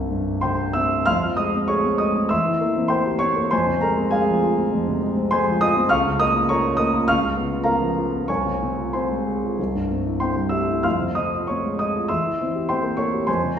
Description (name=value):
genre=classical, romantic character piece for solo piano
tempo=92-104 BPM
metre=4/4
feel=rubato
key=F minor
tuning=A4 = 438 Hz
part: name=warm concert grand piano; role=solo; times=0.0-13.6 s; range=C2 to F6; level=-19 LUFS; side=equal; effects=none
room=wet recital hall reverb, RT60 1.6 s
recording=heard from further back in the room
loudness=-19 LUFS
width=side -8 dB against mid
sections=0.0-1.1 A section; 1.1-13.6 B section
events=none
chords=0.0 C; 1.1 Fm; 2.3 C7/E; 3.5 Fm; 5.9 Bbm/Db; 7.1 Db7; 8.3 Fm/C; 9.6 C; 10.8 Fm; 12.1 C7/E